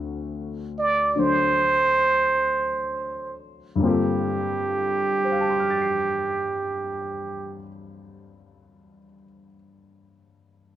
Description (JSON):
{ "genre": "jazz", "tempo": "42-52 BPM", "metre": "4/4", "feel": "swing 69% on 8ths", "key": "G minor", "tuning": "A4 = 440 Hz", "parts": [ { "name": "dark grand piano", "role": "accompaniment", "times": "0.0-10.8 s", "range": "D2 to C7", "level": "-27 LUFS", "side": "left 4 dB", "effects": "none" }, { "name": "trumpet with plunger mute", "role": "melody", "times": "0.8-7.6 s", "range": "G4 to D5", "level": "-22 LUFS", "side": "right 3 dB", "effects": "none" } ], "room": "light reverb", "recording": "dark, warm production", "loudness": "-21 LUFS", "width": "side -11 dB against mid", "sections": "0.0-3.8 A section; 3.8-9.5 B section", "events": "slowing down 0.0-3.8", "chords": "0.0 D7; 3.8 Gm11" }